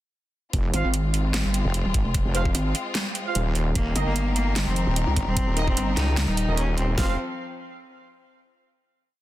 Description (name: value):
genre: heavy wobble dubstep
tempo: 149 BPM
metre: 4/4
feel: swing 54% on 16ths, half-time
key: F minor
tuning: A4 = 439 Hz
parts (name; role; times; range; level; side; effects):
- warm studio string section; sustained chords; 0.5-7.2 s; Eb3 to C5; -33 LUFS; left 3 dB; vintage 12-bit sampler grit, sidechain pumping
- wobble bass; bass; 0.5-7.2 s; Eb1 to Db2; -24 LUFS; equal; chorus, overdrive
- dubstep drum kit; drums; 0.5-7.1 s; kick drum, snare drum; -25 LUFS; equal; none
- dubstep drum kit; drums; 0.5-6.9 s; hi-hat, snare drum; -29 LUFS; right 1 dB; none
- clear brass ensemble; stabs; 0.7-7.1 s; Eb4 to F5; -32 LUFS; right 4 dB; digital delay
- pulsing pluck wobble bass; bass; 0.7-6.5 s; Eb1 to Db2; -24 LUFS; equal; distortion, chorus, overdrive
- rich cello; melody; 3.8-7.1 s; Bb3 to Eb4; -31 LUFS; left 1 dB; digital delay
room: small room ambience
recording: dense, heavily limited modern master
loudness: -22 LUFS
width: side -15 dB against mid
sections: 0.5-7.0 drop; 7.0-8.6 final chord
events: drop 0.5-7.0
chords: 0.5 Fm; 3.8 Eb; 7.0 F5